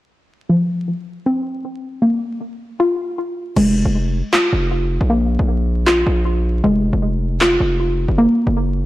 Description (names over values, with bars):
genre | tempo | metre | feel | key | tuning
hip hop, trap | 156 BPM | 4/4 | half-time | F phrygian | A4 = 442 Hz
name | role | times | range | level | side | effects
soft round pluck | arpeggios | 0.5-8.9 s | F3 to F4 | -18 LUFS | equal | chorus, low-pass filter, digital delay
distorted 808-style bass | bass | 3.6-8.9 s | F1 to Bb1 | -18 LUFS | equal | distortion
trap drum kit | drums | 3.6-7.5 s | crash cymbal, handclaps | -22 LUFS | equal | none
room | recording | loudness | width
light reverb, digital ambience | blown-out, overdriven recording, vinyl crackle, overdrive | -15 LUFS | side -16 dB against mid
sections
0.5-3.6 A section; 3.6-8.9 B section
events
filter sweep on synth pluck 0.5-3.6; hi-hats muted 3.6-8.9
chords
0.5 F5; 2.0 Bb5; 3.6 Fm; 5.1 Bb5; 6.6 Fm; 8.2 Gb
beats
| 0.49 0.87 1.26 1.64 | 2.03 2.41 2.79 3.18 | 3.56 3.95 4.33 4.72 | 5.10 5.49 5.87 6.26 | 6.64 7.03 7.41 7.79 | 8.18 8.56